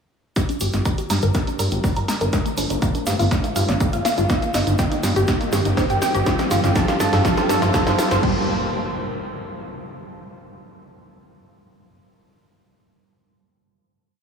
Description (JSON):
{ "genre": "melodic techno", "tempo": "122 BPM", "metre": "4/4", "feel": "straight", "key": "G minor", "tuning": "A4 = 440 Hz", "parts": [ { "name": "dark analog pad", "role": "sustained chords", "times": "0.4-8.5 s", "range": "G3 to D5", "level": "-28 LUFS", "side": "equal", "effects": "chorus, sidechain pumping" }, { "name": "tight sequenced synth", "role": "arpeggios", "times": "0.4-8.5 s", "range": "A3 to Bb5", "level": "-24 LUFS", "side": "equal", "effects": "chorus, phaser, sidechain pumping, tape echo" }, { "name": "electronic kick drum", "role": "drums", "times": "0.4-8.3 s", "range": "none", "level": "-23 LUFS", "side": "equal", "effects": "overdrive" }, { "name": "punchy analog drum machine", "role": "drums", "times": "0.4-8.3 s", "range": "crash cymbal, hi-hat, snare drum", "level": "-26 LUFS", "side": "equal", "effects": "none" }, { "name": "egg shaker", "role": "percussion", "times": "0.4-8.2 s", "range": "none", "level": "-37 LUFS", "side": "equal", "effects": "none" }, { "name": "riser and impact", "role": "sound effects", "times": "4.0-10.2 s", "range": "none", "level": "-30 LUFS", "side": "right 2 dB", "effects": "none" }, { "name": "fat analog bass", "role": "bass", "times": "0.6-8.5 s", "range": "G1 to G2", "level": "-21 LUFS", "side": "equal", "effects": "sidechain pumping" } ], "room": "wet cathedral reverb, RT60 5.1 s", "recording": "dreamy mix soaked in reverb, studio ambience", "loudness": "-18 LUFS", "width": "side -6 dB against mid", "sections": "0.4-8.2 build; 8.2-10.2 final chord", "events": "build-up 0.4-8.2; drum fill 0.4-8.2; filter sweep on synth arpeggio sound 0.4-8.2; filter sweep on analog synth pad 0.4-8.2", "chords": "0.4 Gm; 2.3 Dm7/G; 4.3 Eb/G; 6.3 Fadd9/G; 8.2 Gm" }